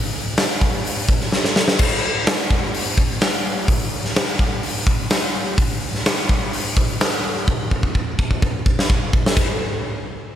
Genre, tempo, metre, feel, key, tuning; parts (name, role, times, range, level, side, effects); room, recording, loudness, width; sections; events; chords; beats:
rock; 127 BPM; 4/4; straight
big rock drum kit; drums; 0.4-9.5 s; crash cymbal, hi-hat, kick drum, snare drum; -17 LUFS; equal
light reverb; -17 LUFS; side -10 dB against mid
0.0-1.8 A section; 1.8-9.4 B section
drum fill 1.3-1.8, 7.5-9.4
0.38 0.85 1.32 | 1.79 2.27 2.74 3.21 | 3.69 4.16 4.63 5.11 | 5.58 6.05 6.53 7.00 | 7.47 7.95 8.42 8.89 | 9.37